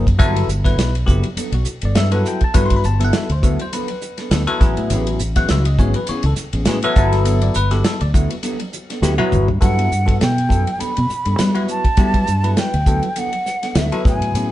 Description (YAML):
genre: electric jazz fusion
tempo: 102 BPM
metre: 4/4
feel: swing 56% on 16ths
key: G major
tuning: A4 = 440 Hz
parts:
  - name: bell-like tine electric piano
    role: accompaniment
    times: 0.0-14.5 s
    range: F#3 to C6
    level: -22 LUFS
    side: left 2 dB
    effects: phaser
  - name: fingered electric bass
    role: bass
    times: 0.0-14.5 s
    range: F#1 to G3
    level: -18 LUFS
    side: equal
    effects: none
  - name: damped 70s drum kit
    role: drums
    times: 0.1-14.5 s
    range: hi-hat, kick drum, ride cymbal, snare drum, toms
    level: -19 LUFS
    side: equal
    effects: none
  - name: mellow electric guitar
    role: stabs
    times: 0.2-14.5 s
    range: E3 to A4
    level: -28 LUFS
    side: right 1 dB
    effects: none
  - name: breathy concert flute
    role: melody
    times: 9.6-14.5 s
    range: E5 to B5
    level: -22 LUFS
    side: right 1 dB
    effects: none
room: light reverb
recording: band playing live in one room, nothing above 10.7 kHz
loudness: -15 LUFS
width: side -14 dB against mid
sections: 0.0-9.6 A section; 9.6-14.5 B section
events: drum fill 9.0-9.6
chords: 0.2 Gmaj9; 4.6 Amaj9; 7.0 Gmaj9